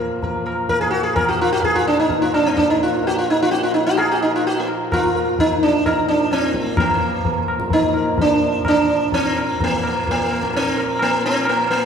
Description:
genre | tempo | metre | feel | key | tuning
indian classical, Hindustani | 128 BPM | 4/4 | straight | Bb major | A4 = 440 Hz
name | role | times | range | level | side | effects
sitar | melody | 0.0-11.9 s | Bb3 to Bb4 | -18 LUFS | equal | none
pedal harmonium | drone | 0.0-11.9 s | Bb2 to F3 | -28 LUFS | equal | none
tabla | percussion | 0.2-11.9 s | none | -22 LUFS | left 1 dB | none
room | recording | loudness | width
wet church reverb, RT60 2.5 s | recorded in a church or concert hall | -16 LUFS | side -7 dB against mid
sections
0.0-6.8 A section; 6.8-11.9 B section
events
none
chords
none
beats
0.22 0.69 | 1.16 1.63 2.10 2.57 | 3.04 3.51 3.98 4.45 | 4.92 5.39 5.86 6.33 | 6.79 7.26 7.73 8.20 | 8.66 9.13 9.60 10.06 | 10.53 11.00 11.46

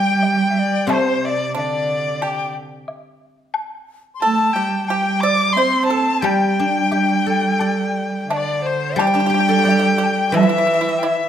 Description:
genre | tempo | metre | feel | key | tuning
chinese traditional, Chinese chamber ensemble | 89 BPM | 4/4 | rubato | G zhi mode | A4 = 441 Hz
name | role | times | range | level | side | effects
rich erhu | melody | 0.0-11.3 s | C5 to D6 | -21 LUFS | left 1 dB | none
bright dizi | second line | 0.0-11.3 s | C5 to E6 | -23 LUFS | left 6 dB | none
pipa | second line | 0.0-11.3 s | C4 to D5 | -24 LUFS | right 4 dB | none
warm cello | second line | 0.0-11.3 s | C3 to C4 | -21 LUFS | right 5 dB | none
guzheng | accompaniment | 0.0-11.3 s | C3 to D5 | -23 LUFS | left 2 dB | none
woodblock | percussion | 0.2-11.2 s | none | -27 LUFS | left 4 dB | none
room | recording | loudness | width
moderate recital hall reverb, RT60 1.3 s | close, detailed microphones | -16 LUFS | side -9 dB against mid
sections
0.0-9.0 A section; 9.0-11.3 B section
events
none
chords
none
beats
0.23 | 0.90 1.56 2.22 2.88 | 3.55 4.22 4.89 5.57 | 6.24 6.92 7.60 8.30 | 8.99 9.68 10.36 11.04

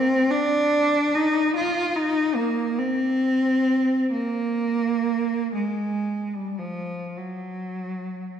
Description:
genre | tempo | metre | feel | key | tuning
classical, free, expressive piece for unaccompanied cello | 36-49 BPM (dotted quarters) | 6/8 | rubato | unclear | A4 = 440 Hz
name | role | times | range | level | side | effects
rich cello | solo | 0.0-8.4 s | F3 to F4 | -21 LUFS | equal | none
room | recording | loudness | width
wet scoring stage reverb, RT60 1.9 s | dark, warm production | -21 LUFS | side -8 dB against mid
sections
0.0-8.4 A section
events
none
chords
none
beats
0.33 | 1.57 2.81 | 4.12 5.54 | 7.14

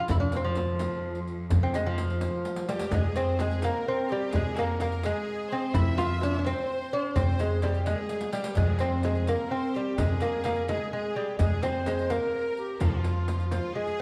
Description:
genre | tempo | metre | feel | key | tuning
Persian modal ensemble | 85 BPM (dotted quarters) | 6/8 | straight | F avaz esfahan | A4 = 441 Hz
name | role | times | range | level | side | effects
lute | melody | 0.0-14.0 s | F3 to F4 | -32 LUFS | equal | none
rich cello | drone | 0.0-3.0 s | F2 | -41 LUFS | equal | none
upright bass | bass | 0.1-13.6 s | F2 | -32 LUFS | equal | none
frame drum | percussion | 0.1-13.6 s | none | -37 LUFS | equal | none
riq | percussion | 0.1-14.0 s | none | -46 LUFS | equal | none
tombak | percussion | 0.1-14.0 s | none | -36 LUFS | equal | none
breathy bright ney | second line | 2.7-14.0 s | E4 to F5 | -38 LUFS | equal | none
bright studio violin section | second line | 2.7-14.0 s | F4 to E5 | -41 LUFS | equal | none
room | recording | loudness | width
wet recital hall reverb, RT60 1.7 s | dark, warm production | -28 LUFS | mono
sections
0.0-2.9 A section; 2.9-14.0 B section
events
drum fill 2.5-2.9, 8.1-8.6, 13.8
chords
none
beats
| 0.09 0.80 | 1.51 2.21 | 2.92 3.63 | 4.33 5.04 | 5.75 6.45 | 7.16 7.87 | 8.57 9.28 | 9.98 10.69 | 11.40 12.10 | 12.81 13.52

